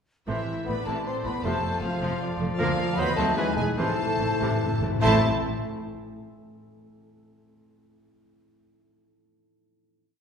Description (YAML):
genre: classical, dramatic, fast romantic movement for symphony orchestra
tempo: 143-158 BPM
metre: 3/4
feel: rubato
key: A minor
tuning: A4 = 440 Hz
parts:
  - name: rich studio violin section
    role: melody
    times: 0.3-5.2 s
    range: E5 to C6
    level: -34 LUFS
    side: left 2 dB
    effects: none
  - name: clear oboe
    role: second line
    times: 0.3-5.2 s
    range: Bb4 to C5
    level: -35 LUFS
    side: right 1 dB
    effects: none
  - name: mellow hollow silver concert flute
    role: second line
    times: 0.3-5.2 s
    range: E5 to C6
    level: -33 LUFS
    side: equal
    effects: none
  - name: warm symphonic violin section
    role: second line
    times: 0.3-5.2 s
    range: E4 to A5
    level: -36 LUFS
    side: left 1 dB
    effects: none
  - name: bright symphonic viola section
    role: accompaniment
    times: 0.3-5.2 s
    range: C3 to E4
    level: -34 LUFS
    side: equal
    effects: none
  - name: clear bassoon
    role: accompaniment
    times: 0.3-5.2 s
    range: E3 to A3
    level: -35 LUFS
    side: right 2 dB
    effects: none
  - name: warm French horn section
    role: sustained chords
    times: 0.3-5.2 s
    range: E3 to C4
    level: -32 LUFS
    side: equal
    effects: none
  - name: concert harp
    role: arpeggios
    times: 0.3-6.3 s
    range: A2 to C6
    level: -32 LUFS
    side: left 3 dB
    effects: none
  - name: warm symphonic cello section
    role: bass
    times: 0.3-5.2 s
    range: D2 to A2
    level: -34 LUFS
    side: right 2 dB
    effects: none
  - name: warm symphonic double bass section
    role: bass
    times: 0.3-5.2 s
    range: E1 to D#2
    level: -35 LUFS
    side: right 2 dB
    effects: none
  - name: timpani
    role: percussion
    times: 0.3-0.8, 3.8-5.2 s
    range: A2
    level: -32 LUFS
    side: equal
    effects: none
  - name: clear clarinet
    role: second line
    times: 0.7-5.2 s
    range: E4 to D#5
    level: -36 LUFS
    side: left 1 dB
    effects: none
room: wet scoring stage reverb, RT60 1.7 s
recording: heard from further back in the room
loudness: -23 LUFS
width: side -7 dB against mid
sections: 0.3-5.0 A section; 5.0-6.2 final chord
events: timpani fill 3.8-5.0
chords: 0.3 Am; 1.4 F; 2.6 Bb/D; 3.0 D#dim7; 3.4 E7; 3.8 Am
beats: | 0.28 0.68 1.07 | 1.45 1.83 2.21 | 2.59 2.97 3.37 | 3.78 4.19 4.61 | 5.02 5.42 5.83